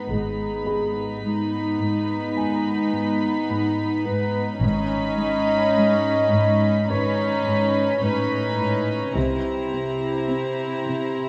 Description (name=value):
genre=cinematic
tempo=53 BPM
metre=4/4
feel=straight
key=unclear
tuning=A4 = 441 Hz
part: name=warm studio violin section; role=melody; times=0.0-11.3 s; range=Bb5 to B5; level=-35 LUFS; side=equal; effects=none
part: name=dark clarinet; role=second line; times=0.0-11.3 s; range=D#4 to D#5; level=-27 LUFS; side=equal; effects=none
part: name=warm studio violin section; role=second line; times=0.0-11.3 s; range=D#4 to E4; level=-32 LUFS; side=equal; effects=none
part: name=warm studio viola section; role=accompaniment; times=0.0-11.3 s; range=B3 to C#4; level=-32 LUFS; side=equal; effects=none
part: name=warm studio cello section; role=bass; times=0.0-11.3 s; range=G#2 to C3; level=-31 LUFS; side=equal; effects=none
part: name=dark concert grand piano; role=texture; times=0.0-11.3 s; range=G#4 to C#6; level=-38 LUFS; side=equal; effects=none
part: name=warm studio cello section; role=riff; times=0.1-11.2 s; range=G#2 to C4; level=-30 LUFS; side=equal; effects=none
part: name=rich studio double bass section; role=bass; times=0.1-10.2 s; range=G#1 to C2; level=-32 LUFS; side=equal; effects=none
room=wet scoring stage reverb, RT60 2.0 s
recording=none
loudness=-23 LUFS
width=mono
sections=0.0-11.3 A section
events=none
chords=0.0 G#m; 4.6 Badd9/G#; 9.2 C7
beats=| 0.10 1.23 2.37 3.50 | 4.63 5.76 6.89 8.03 | 9.16 10.29